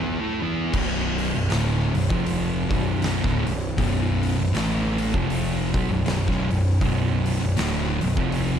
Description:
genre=stoner and doom metal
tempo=79 BPM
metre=4/4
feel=swing 59% on 8ths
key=B minor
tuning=A4 = 440 Hz
part: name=thick fuzz guitar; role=riff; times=0.0-8.6 s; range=B1 to E4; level=-26 LUFS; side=left 7 dB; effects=distortion
part: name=thick fuzz guitar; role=riff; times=0.0-8.6 s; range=B1 to E4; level=-25 LUFS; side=right 6 dB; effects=distortion
part: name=fuzz picked electric bass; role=bass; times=0.7-8.6 s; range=B0 to B1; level=-28 LUFS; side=equal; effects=overdrive
part: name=oversized low-tuned drum kit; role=drums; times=0.7-8.5 s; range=crash cymbal, hi-hat, kick drum, snare drum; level=-28 LUFS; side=equal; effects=none
room=small room ambience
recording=dark, warm production, lossy compression artefacts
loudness=-21 LUFS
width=side -8 dB against mid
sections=0.7-8.6 A section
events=break 0.0-0.7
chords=0.0 A5; 0.7 Bm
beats=| 0.74 1.50 2.26 3.02 | 3.78 4.54 5.30 6.06 | 6.82 7.58 8.33

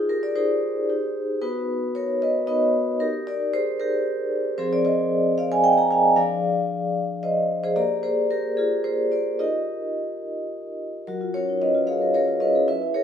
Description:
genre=classical, contemporary piece for solo vibraphone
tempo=113 BPM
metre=3/4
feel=straight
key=Eb major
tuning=A4 = 440 Hz
part: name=vibraphone with soft mallets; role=solo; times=0.0-13.0 s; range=F3 to Bb5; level=-21 LUFS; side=equal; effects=none
room=wet stone room reverb, RT60 0.9 s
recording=heard from further back in the room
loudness=-21 LUFS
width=side -8 dB against mid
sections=0.0-11.1 A section; 11.1-13.0 B section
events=none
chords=0.0 Ebadd9; 0.9 Cm/Eb; 1.4 Bmaj7; 3.0 Eb; 4.6 Fm7; 6.2 Ab/F; 7.8 Bb5; 9.4 Ebadd9; 11.1 F#maj9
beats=0.36 0.90 | 1.42 1.95 2.48 | 3.01 3.53 4.06 | 4.59 5.11 5.64 | 6.16 6.69 7.23 | 7.76 8.30 8.84 | 9.39 9.96 10.52 | 11.07 11.62 12.15 | 12.68

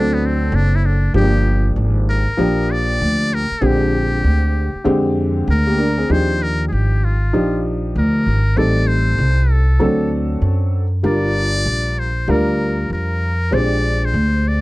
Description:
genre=hip hop, jazz-hop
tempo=97 BPM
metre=4/4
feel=swing 64% on 16ths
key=Eb major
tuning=A4 = 440 Hz
part: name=trumpet with metal mute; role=melody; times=0.0-14.6 s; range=Cb4 to D5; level=-23 LUFS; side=left 1 dB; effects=none
part: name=dark baby grand piano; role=accompaniment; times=0.0-14.6 s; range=D3 to C5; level=-20 LUFS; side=equal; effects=none
part: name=upright bass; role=bass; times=0.0-14.6 s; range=F#1 to F#2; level=-17 LUFS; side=equal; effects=none
room=little or no reverb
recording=dry, close 1970s-style studio recording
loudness=-15 LUFS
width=side -20 dB against mid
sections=0.0-6.1 A section; 6.1-14.6 B section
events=muted trumpet solo 0.0-6.1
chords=0.0 D7; 1.1 Gm7; 3.6 Bb13; 6.1 Ebmaj9; 8.6 Am7b5; 9.8 D7; 11.0 Gm7; 13.5 Bb13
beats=0.53 | 1.15 1.77 2.38 3.00 | 3.62 4.24 4.86 5.48 | 6.10 6.71 7.33 7.95 | 8.57 9.19 9.81 10.43 | 11.04 11.66 12.28 12.90 | 13.52 14.14

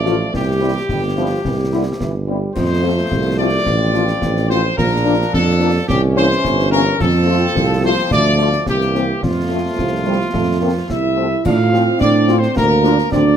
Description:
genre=military-style march for wind band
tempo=108 BPM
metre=2/4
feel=straight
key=F major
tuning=A4 = 440 Hz
part: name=bright trumpet section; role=melody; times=0.0-13.4 s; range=F4 to F5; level=-20 LUFS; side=left 2 dB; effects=none
part: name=warm trombone section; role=sustained chords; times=0.0-13.2 s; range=D3 to D4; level=-24 LUFS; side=right 2 dB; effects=none
part: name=mellow tuba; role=bass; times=0.0-13.4 s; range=G1 to A2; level=-18 LUFS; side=right 3 dB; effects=none
part: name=warm French horn section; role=accompaniment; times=0.1-12.9 s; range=E3 to F4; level=-23 LUFS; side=left 6 dB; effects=none
part: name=concert snare drum, concert bass drum and clash cymbals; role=drums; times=0.1-13.3 s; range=none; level=-24 LUFS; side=left 2 dB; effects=none
part: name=warm euphonium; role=second line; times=9.8-13.4 s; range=F3 to F4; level=-18 LUFS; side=right 4 dB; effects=none
room=moderate large studio reverb, RT60 1.5 s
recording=none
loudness=-14 LUFS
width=side -8 dB against mid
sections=0.0-11.4 A section; 11.4-13.4 B section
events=none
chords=0.3 C; 2.6 F; 3.7 F/A; 4.8 Bb; 5.9 C7b9; 7.0 F; 8.1 Dm; 8.7 C7; 9.2 F; 11.4 F/A; 12.6 Bb/D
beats=| 0.33 0.89 | 1.44 2.00 | 2.55 3.11 | 3.67 4.22 | 4.78 5.33 | 5.89 6.45 | 7.00 7.56 | 8.11 8.67 | 9.22 9.78 | 10.34 10.89 | 11.45 12.00 | 12.56 13.11

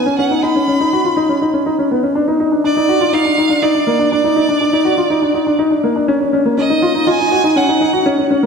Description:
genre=electronica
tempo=122 BPM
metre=4/4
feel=straight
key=unclear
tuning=A4 = 444 Hz
part: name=bright violin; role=melody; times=0.0-8.1 s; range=D5 to B5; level=-18 LUFS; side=right 4 dB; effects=none
part: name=warm baby grand piano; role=riff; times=0.0-8.5 s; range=Bb3 to F#4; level=-13 LUFS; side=left 1 dB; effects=ping-pong delay
room=wet concert hall reverb, RT60 2.2 s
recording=none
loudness=-12 LUFS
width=side -5 dB against mid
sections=0.0-6.1 A section; 6.1-8.5 B section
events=build-up 6.1-8.5; filter sweep 6.1-8.5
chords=0.0 Badd9; 2.2 N.C.; 6.1 Ebm7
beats=| 0.19 0.68 1.17 1.66 | 2.15 2.65 3.14 3.63 | 4.12 4.61 5.10 5.59 | 6.09 6.58 7.07 7.56 | 8.05

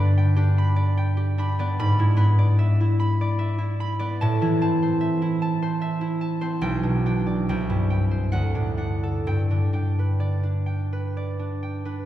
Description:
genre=classical, solo harp piece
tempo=63-76 BPM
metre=3/4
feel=rubato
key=G major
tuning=A4 = 440 Hz
part: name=concert harp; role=solo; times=0.0-12.1 s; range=B1 to B5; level=-20 LUFS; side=equal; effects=none
room=wet church reverb, RT60 2.4 s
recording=heard from further back in the room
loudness=-21 LUFS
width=side -12 dB against mid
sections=0.0-12.1 A section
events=none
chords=0.0 G; 1.8 E7/G#; 4.2 Am; 6.6 G/B; 7.5 C; 8.3 D; 9.2 G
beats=0.17 0.97 | 1.79 2.59 3.39 | 4.19 5.00 5.81 | 6.62 7.46 8.33 | 9.25 10.20 11.15

